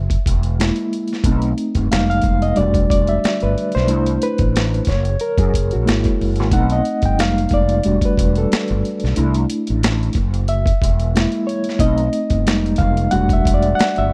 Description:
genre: R&B, neo-soul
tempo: 91 BPM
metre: 4/4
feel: swing 57% on 16ths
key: unclear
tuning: A4 = 440 Hz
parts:
  - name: reed electric piano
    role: accompaniment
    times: 0.0-14.1 s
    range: G3 to G5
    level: -21 LUFS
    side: equal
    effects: fast tremolo
  - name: fretless electric bass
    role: bass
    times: 0.0-14.1 s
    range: E1 to F#2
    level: -21 LUFS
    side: equal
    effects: ensemble chorus
  - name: boom bap sampler-style drum kit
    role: drums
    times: 0.1-14.1 s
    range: hi-hat, kick drum, snare drum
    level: -22 LUFS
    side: equal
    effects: none
room: digital ambience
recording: dry, close 1970s-style studio recording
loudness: -18 LUFS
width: mono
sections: 0.0-14.1 A section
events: reed electric piano solo 0.0-14.1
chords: 0.0 F#7; 1.2 B7b9; 1.9 Fm11; 2.6 Em11; 3.9 C69; 4.9 F#7; 6.5 B7b9; 7.2 Fm11; 7.8 Em11; 9.2 C69; 10.1 F#7; 11.8 B7b9; 12.5 Fm11; 13.1 Em11

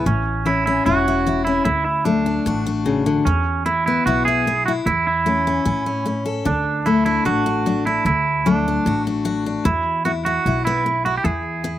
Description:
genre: country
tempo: 150 BPM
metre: 4/4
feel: straight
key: A major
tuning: A4 = 440 Hz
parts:
  - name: twangy electric guitar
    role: second line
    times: 0.0-11.8 s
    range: C#4 to G#4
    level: -20 LUFS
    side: right 4 dB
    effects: slapback echo
  - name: picked steel-string acoustic guitar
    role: accompaniment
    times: 0.0-11.8 s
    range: A2 to A4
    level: -21 LUFS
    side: left 4 dB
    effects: slapback echo
  - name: upright bass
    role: bass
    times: 0.1-11.8 s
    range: E1 to A2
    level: -25 LUFS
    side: equal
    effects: none
room: little or no reverb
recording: recorded outdoors, with no room sound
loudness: -17 LUFS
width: side -12 dB against mid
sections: 0.1-11.8 A section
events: clean electric guitar solo 0.1-11.8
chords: 0.1 A; 1.7 D; 3.3 E; 4.9 A/E; 6.5 D; 9.7 E

